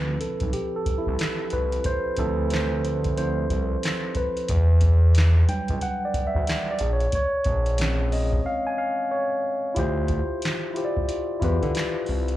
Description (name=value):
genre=R&B, neo-soul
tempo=91 BPM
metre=4/4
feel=swing 64% on 16ths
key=D dorian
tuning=A4 = 442 Hz
part: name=mellow tine electric piano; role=accompaniment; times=0.0-12.4 s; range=F3 to Ab5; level=-26 LUFS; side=equal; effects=slapback echo
part: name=smooth synth bass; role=bass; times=0.0-12.4 s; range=Bb1 to D3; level=-22 LUFS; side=equal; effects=none
part: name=soft vintage rhythm box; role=drums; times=0.2-12.4 s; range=handclaps, hi-hat, kick drum, snare drum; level=-28 LUFS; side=equal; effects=none
room=little or no reverb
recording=live gig heard through the venue's PA, club reverb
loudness=-21 LUFS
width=side -14 dB against mid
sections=0.0-9.8 A section; 9.8-12.4 B section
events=tine electric piano solo 0.0-9.8; break 8.4-9.8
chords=0.0 Dm9; 4.5 Em9; 6.8 Bbm9; 9.8 Dm9